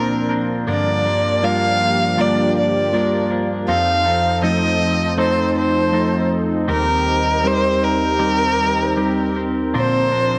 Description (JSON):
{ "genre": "pop", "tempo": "80 BPM", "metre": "4/4", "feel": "straight", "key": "unclear", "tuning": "A4 = 440 Hz", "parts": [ { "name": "clear violin", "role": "melody", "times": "0.0-10.4 s", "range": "Bb4 to F5", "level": "-21 LUFS", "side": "equal", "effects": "none" }, { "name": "bell-like tine electric piano", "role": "accompaniment", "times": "0.0-10.4 s", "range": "Eb2 to F4", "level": "-23 LUFS", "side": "equal", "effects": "none" }, { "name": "lush unison pad", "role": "sustained chords", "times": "0.0-10.4 s", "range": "F3 to Bb4", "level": "-26 LUFS", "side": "equal", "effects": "chorus, phaser" }, { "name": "twelve-string electric guitar", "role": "arpeggios", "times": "0.0-10.4 s", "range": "G2 to Bb4", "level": "-27 LUFS", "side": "equal", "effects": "none" } ], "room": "moderate lush hall reverb, RT60 2.5 s", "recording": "worn, warbling old tape, cassette tape, warbly pitch drift", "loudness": "-18 LUFS", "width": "mono", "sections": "0.0-10.4 A section", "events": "none", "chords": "0.0 Bbadd9; 0.7 Gm7; 3.7 F7; 6.7 Eb6; 9.7 Bbadd9" }